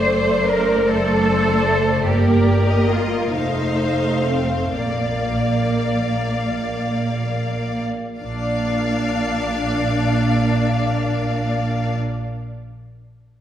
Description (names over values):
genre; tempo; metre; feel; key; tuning
classical, slow romantic movement for string orchestra; 31-51 BPM (dotted quarters); 6/8; rubato; Bb major; A4 = 440 Hz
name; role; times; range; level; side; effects
rich studio violin section; melody; 0.0-11.9 s; D5 to F5; -27 LUFS; left 4 dB; none
clear symphonic violin section; second line; 0.0-11.9 s; Bb4 to D5; -26 LUFS; left 2 dB; none
rich symphonic viola section; accompaniment; 0.0-12.0 s; A3 to D4; -24 LUFS; right 1 dB; none
rich symphonic cello section; bass; 0.0-11.9 s; Bb3 to C5; -23 LUFS; right 2 dB; none
rich symphonic double bass section; bass; 0.0-11.9 s; F1 to Bb1; -23 LUFS; right 1 dB; none
room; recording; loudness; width
wet scoring stage reverb, RT60 1.8 s; heard from further back in the room; -17 LUFS; side -10 dB against mid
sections
0.0-8.2 A section; 8.2-11.8 B section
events
slowing down 0.9-8.2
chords
0.0 D7/F#; 2.1 Gm; 3.3 F7; 4.8 Bb